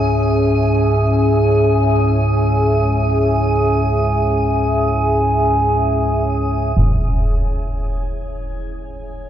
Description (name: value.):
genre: dark ambient drone.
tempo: free time.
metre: none.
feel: none.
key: unclear.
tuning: A4 = 441 Hz.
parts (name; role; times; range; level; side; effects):
deep dark ambient pad; sustained chords; 0.0-9.3 s; C#4 to E5; -19 LUFS; equal; chorus, built-in reverb.
deep rumbling drone; drone; 0.0-9.3 s; C#2 to G#2; -19 LUFS; equal; built-in reverb, lush chorus.
metallic inharmonic drone; texture; 0.0-9.3 s; C#4 to G#4; -22 LUFS; equal; chorus, built-in reverb.
concert bass drum; percussion; 6.8-7.0 s; none; -19 LUFS; equal; low-pass filter on kick.
room: wet huge ambient reverb, RT60 8.1 s.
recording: worn, warbling old tape, cassette tape, warbly pitch drift.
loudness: -14 LUFS.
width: side -10 dB against mid.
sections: 0.0-6.8 A section; 6.8-9.3 B section.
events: none.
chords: 0.0 C#m.